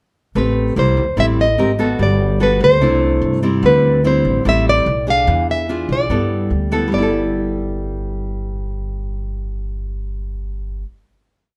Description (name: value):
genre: bossa nova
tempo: 146 BPM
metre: 4/4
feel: straight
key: G major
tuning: A4 = 440 Hz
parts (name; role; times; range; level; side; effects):
- nylon-string guitar; melody; 0.4-10.8 s; B4 to F5; -19 LUFS; equal; none
- nylon-string guitar; accompaniment; 0.4-11.0 s; A2 to B4; -22 LUFS; equal; none
- upright bass; bass; 0.4-10.8 s; G1 to G2; -22 LUFS; equal; none
room: moderate studio reverb, RT60 0.8 s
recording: band playing live in one room, lossy compression artefacts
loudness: -17 LUFS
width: mono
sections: 0.4-6.9 A section; 6.9-10.2 final chord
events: none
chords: 0.4 Am9; 0.8 C7; 1.2 Am7; 1.6 Abmaj9; 2.0 Gmaj9; 2.8 C69; 3.6 D9sus4; 5.3 E7b9; 6.1 G69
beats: | 0.35 0.76 1.17 1.58 | 1.99 2.40 2.81 3.22 | 3.63 4.04 4.45 4.86 | 5.27 5.68 6.09 6.50 | 6.91 7.32 7.73 8.14 | 8.55 8.96 9.37 9.78